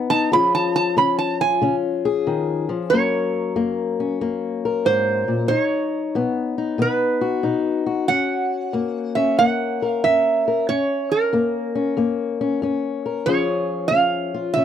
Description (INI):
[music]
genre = acoustic country blues, solo or duo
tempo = 93 BPM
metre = 4/4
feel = swing 66% on 8ths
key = F# major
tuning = A4 = 441 Hz
[part]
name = fingerpicked old ladder-braced acoustic guitar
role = accompaniment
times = 0.0-14.6 s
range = F#2 to A#4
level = -21 LUFS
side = left 5 dB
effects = none
[part]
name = metal-body resonator slide guitar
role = melody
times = 0.1-14.6 s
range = A#4 to B5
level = -20 LUFS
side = right 5 dB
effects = none
[sound]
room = little or no reverb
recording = dry, close 1970s-style studio recording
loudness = -18 LUFS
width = side -9 dB against mid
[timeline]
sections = 0.0-2.9 A section; 2.9-14.6 B section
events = resonator guitar played with a steel bar solo 0.0-2.9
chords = 0.3 C#; 2.9 F#; 5.5 B; 8.1 F#; 13.3 C#